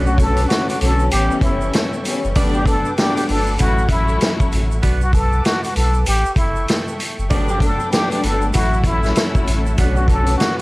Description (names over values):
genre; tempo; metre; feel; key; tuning
hip hop, boom-bap hip-hop; 97 BPM; 4/4; swing 60% on 16ths; B minor; A4 = 440 Hz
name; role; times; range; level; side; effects
dark studio string section; accompaniment; 0.0-10.6 s; D3 to E4; -22 LUFS; left 2 dB; cassette tape, high-pass filter, low-pass filter, plate reverb
warm analog pad; sustained chords; 0.0-10.6 s; A4 to E6; -31 LUFS; right 1 dB; chorus, high-pass filter, low-pass filter, plate reverb
mellow saxophone section; stabs; 0.0-10.0 s; G3 to F#4; -27 LUFS; right 4 dB; high-pass filter, low-pass filter, slapback echo, plate reverb
soft dub sub bass; bass; 0.0-10.4 s; F#1 to B1; -19 LUFS; equal; none
trumpet with plunger mute; melody; 0.1-10.6 s; E4 to A4; -21 LUFS; equal; high-pass filter, low-pass filter, slapback echo, plate reverb
tube shaker; percussion; 0.1-10.6 s; none; -41 LUFS; right 9 dB; none
vintage drum kit; drums; 0.2-10.6 s; hi-hat, kick drum, snare drum; -19 LUFS; equal; none
room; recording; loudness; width
light reverb; vinyl crackle; -15 LUFS; side -21 dB against mid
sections
0.0-10.6 A section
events
none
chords
0.0 Bm7; 1.1 A7; 2.4 Gmaj7; 3.6 F#m7/A; 4.8 Bm7; 6.1 A7; 7.3 Gmaj7; 8.5 F#m7/A; 9.8 Bm7